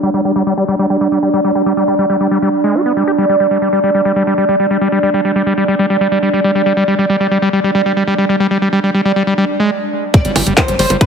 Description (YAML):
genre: psychedelic trance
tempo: 138 BPM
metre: 4/4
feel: straight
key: unclear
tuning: A4 = 441 Hz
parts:
  - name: overtone-sweeping drone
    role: sustained chords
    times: 0.0-11.1 s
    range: D4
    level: -16 LUFS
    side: right 2 dB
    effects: chorus, built-in reverb, phaser, sidechain pumping
  - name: overdriven acid bass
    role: riff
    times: 0.0-11.1 s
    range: G3 to G4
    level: -14 LUFS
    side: left 1 dB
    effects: distortion, auto-pan, cassette tape, sidechain pumping, dub echo
  - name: oud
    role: melody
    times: 10.1-11.1 s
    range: B4 to D5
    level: -18 LUFS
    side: equal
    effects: phaser, sidechain pumping
  - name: drum and bass drum kit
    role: drums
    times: 10.1-11.1 s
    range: bongos, handclaps, hi-hat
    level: -15 LUFS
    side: right 2 dB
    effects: overdrive
  - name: electronic kick drum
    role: drums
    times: 10.1-11.1 s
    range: none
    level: -10 LUFS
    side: left 1 dB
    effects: overdrive
  - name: impact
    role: sound effects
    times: 10.2-11.1 s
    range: none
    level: -26 LUFS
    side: equal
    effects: none
  - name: tight sequencer bass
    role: bass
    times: 10.2-11.0 s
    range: G1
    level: -18 LUFS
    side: left 1 dB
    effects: none
room: wet lush hall reverb, RT60 1.9 s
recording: heavily compressed radio sound, multiband compression, low-pass filter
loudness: -11 LUFS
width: side -6 dB against mid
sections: 0.0-10.1 A section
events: filter sweep on acid bass 0.0-10.1; filter sweep on synth drone 0.0-10.1; filter sweep 0.0-10.1; stop 9.7-10.1; impact 10.1-11.1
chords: 0.0 G5